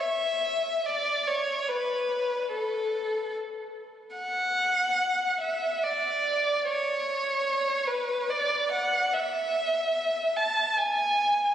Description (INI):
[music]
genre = classical, free, expressive piece for unaccompanied violin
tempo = 72 BPM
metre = 3/4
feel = rubato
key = unclear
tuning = A4 = 439 Hz
[part]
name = warm violin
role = solo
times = 0.0-11.5 s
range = A4 to A5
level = -25 LUFS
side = equal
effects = none
[sound]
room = wet church reverb, RT60 3.4 s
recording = recorded on a phone in the room, club reverb, compression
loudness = -25 LUFS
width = side -10 dB against mid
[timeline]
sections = 0.0-11.5 A section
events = none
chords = none